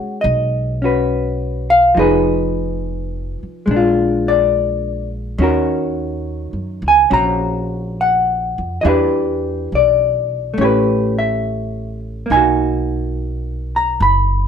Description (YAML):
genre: jazz ballad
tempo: 70 BPM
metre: 4/4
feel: swing 69% on 8ths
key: unclear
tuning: A4 = 441 Hz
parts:
  - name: vintage hollow-body jazz guitar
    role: accompaniment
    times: 0.0-14.5 s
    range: D#3 to B5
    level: -15 LUFS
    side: left 1 dB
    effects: none
  - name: upright bass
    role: bass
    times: 0.2-14.5 s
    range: F1 to F#2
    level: -22 LUFS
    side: equal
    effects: none
room: moderate studio reverb, RT60 0.8 s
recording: none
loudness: -14 LUFS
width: side -7 dB against mid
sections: 0.0-14.5 A section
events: none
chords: 0.0 G#m7; 2.0 Fm7b5; 3.7 A#7; 5.4 D#m7; 8.8 Em7; 10.6 A9; 12.3 Bmaj7